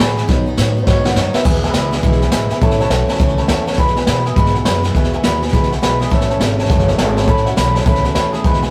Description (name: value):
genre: rockabilly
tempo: 206 BPM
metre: 4/4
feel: swing 62% on 8ths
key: E major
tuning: A4 = 440 Hz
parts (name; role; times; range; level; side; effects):
- dark upright piano; accompaniment; 0.0-8.7 s; D#3 to B5; -26 LUFS; equal; none
- picked steel-string acoustic guitar; accompaniment; 0.0-8.7 s; E2 to G#4; -23 LUFS; equal; none
- upright bass; bass; 0.0-8.7 s; F#1 to B2; -22 LUFS; equal; none
- jazz brush drum kit; drums; 0.0-8.7 s; crash cymbal, hi-hat, kick drum, snare drum; -18 LUFS; equal; none
- electric guitar through a small old amp; melody; 1.6-8.7 s; D4 to B4; -24 LUFS; equal; none
room: moderate stone room reverb, RT60 1.2 s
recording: rough rehearsal-room recording, warm saturation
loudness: -15 LUFS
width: mono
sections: 0.0-1.5 A section; 1.5-8.7 B section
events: upright piano solo 0.0-1.5; drum fill 0.3-1.5; upright piano fill 3.2-3.8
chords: 0.3 B; 1.5 E; 2.6 A; 3.8 E; 6.1 A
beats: 0.00 | 0.29 0.58 0.87 1.16 | 1.45 1.75 2.04 2.33 | 2.62 2.91 3.20 3.49 | 3.78 4.08 4.37 4.66 | 4.95 5.24 5.53 5.82 | 6.11 6.41 6.70 6.99 | 7.28 7.57 7.86 8.15 | 8.44